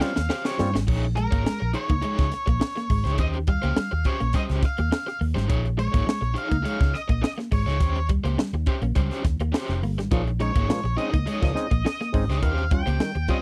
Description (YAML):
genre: funk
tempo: 104 BPM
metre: 4/4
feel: straight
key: Bb dorian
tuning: A4 = 440 Hz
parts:
  - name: octave-fuzz lead guitar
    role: melody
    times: 0.0-13.4 s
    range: Bb4 to G5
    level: -32 LUFS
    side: equal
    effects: distortion
  - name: overdriven electric guitar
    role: accompaniment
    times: 0.0-13.4 s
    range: Db4 to Db5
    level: -34 LUFS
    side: equal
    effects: tremolo
  - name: electric guitar at the edge of break-up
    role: riff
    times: 0.0-13.2 s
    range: G3 to Bb3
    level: -34 LUFS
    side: equal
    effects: none
  - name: overdriven clav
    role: stabs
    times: 0.0-0.7, 10.1-13.4 s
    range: Bb2 to F4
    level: -32 LUFS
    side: equal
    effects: auto-wah
  - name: crisp fusion drum kit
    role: drums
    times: 0.0-13.4 s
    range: crash cymbal, hi-hat, kick drum, snare drum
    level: -27 LUFS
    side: equal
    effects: none
  - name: vintage muted fingered electric bass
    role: bass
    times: 0.2-13.3 s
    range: F1 to G2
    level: -28 LUFS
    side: equal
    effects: none
room: little or no reverb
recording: dry, close 1970s-style studio recording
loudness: -24 LUFS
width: mono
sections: 0.9-13.4 A section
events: drum fill 0.0-0.9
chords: 0.0 Eb13; 0.9 Bbm7; 3.2 Eb13; 5.5 Bbm7; 7.8 Eb13; 10.1 Bbm11; 12.4 Eb13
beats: 0.30 | 0.88 1.46 2.03 2.61 | 3.19 3.77 4.34 4.92 | 5.50 6.08 6.65 7.23 | 7.81 8.38 8.96 9.54 | 10.11 10.69 11.27 11.84 | 12.42 13.00